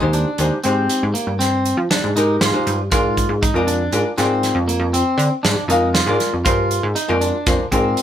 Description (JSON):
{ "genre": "progressive instrumental, band music in an uneven meter", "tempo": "119 BPM", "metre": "7/4", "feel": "straight", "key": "unclear", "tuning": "A4 = 441 Hz", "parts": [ { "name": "archtop guitar, miked and amplified", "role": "accompaniment", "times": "0.0-8.0 s", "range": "Ab3 to F5", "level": "-21 LUFS", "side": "left 2 dB", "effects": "none" }, { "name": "clean electric guitar", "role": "arpeggios", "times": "0.0-8.0 s", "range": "Bb3 to F4", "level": "-21 LUFS", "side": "equal", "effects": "none" }, { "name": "plucky analog bass", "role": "bass", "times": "0.0-8.0 s", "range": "Eb2 to F3", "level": "-21 LUFS", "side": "equal", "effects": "none" }, { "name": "modern studio drum kit", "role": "drums", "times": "0.1-8.0 s", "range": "hi-hat, kick drum, snare drum", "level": "-21 LUFS", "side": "right 1 dB", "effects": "none" } ], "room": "moderate studio ambience, RT60 0.5 s", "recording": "band playing live in one room", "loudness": "-15 LUFS", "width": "side -10 dB against mid", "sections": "0.0-8.0 A section", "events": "none", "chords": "0.0 Abmaj7; 2.9 Bb" }